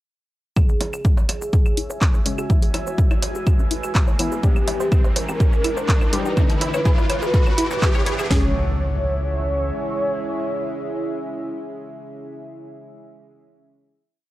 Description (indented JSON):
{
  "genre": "melodic techno",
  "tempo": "124 BPM",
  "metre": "4/4",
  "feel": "straight",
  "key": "C# phrygian",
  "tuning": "A4 = 440 Hz",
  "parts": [
    { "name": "expressive synth lead", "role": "melody", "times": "0.6-12.4 s", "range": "F#4 to C#5", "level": "-27 LUFS", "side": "equal", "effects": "ensemble chorus, vintage 12-bit sampler grit, tape echo" },
    { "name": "deep dark ambient pad", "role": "sustained chords", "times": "1.4-12.4 s", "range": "C#4 to E6", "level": "-32 LUFS", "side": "right 1 dB", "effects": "chorus, built-in reverb, sidechain pumping" },
    { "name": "tight sequenced synth", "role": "arpeggios", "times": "0.6-8.5 s", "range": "Bb3 to C#5", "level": "-29 LUFS", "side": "equal", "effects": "chorus, phaser, vintage 12-bit sampler grit, sidechain pumping, tape echo" },
    { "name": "synth brass stab", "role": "stabs", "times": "0.6-12.4 s", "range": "C#3 to G4", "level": "-30 LUFS", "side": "left 2 dB", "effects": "chorus, cassette tape, sidechain pumping, tape echo" },
    { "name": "tight sequencer bass", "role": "bass", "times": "0.6-9.7 s", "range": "E1 to D2", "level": "-30 LUFS", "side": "equal", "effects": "none" },
    { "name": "bowed-like drone", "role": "drone", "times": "1.8-12.4 s", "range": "C#3 to G#3", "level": "-37 LUFS", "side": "equal", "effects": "built-in reverb, sidechain pumping" },
    { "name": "techno drum kit", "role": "drums", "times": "0.6-8.4 s", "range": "kick drum, snare drum", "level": "-18 LUFS", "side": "equal", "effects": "none" },
    { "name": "techno drum kit", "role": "drums", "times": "0.6-8.3 s", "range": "claves, handclaps, hi-hat, percussion blips, shaker", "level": "-27 LUFS", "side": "right 1 dB", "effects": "high-pass filter on perc, high-pass filter on hats, high-pass filter on snare, high-pass filter on room" },
    { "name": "riser and impact", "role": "sound effects", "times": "2.2-12.4 s", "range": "none", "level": "-29 LUFS", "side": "equal", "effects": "none" }
  ],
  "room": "little or no reverb",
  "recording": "dry, gritty hardware recording",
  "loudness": "-18 LUFS",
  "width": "side -16 dB against mid",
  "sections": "0.6-8.3 build; 8.3-12.2 final chord",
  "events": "build-up 0.6-8.3; filter sweep on synth arpeggio sound 0.6-8.3; filter sweep on analog synth lead 0.6-8.3; filter sweep on synth stab 0.6-8.3; riser 2.2-8.3",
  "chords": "0.6 C#m; 2.5 E; 4.4 Gm; 6.4 Dadd9; 8.3 C#m"
}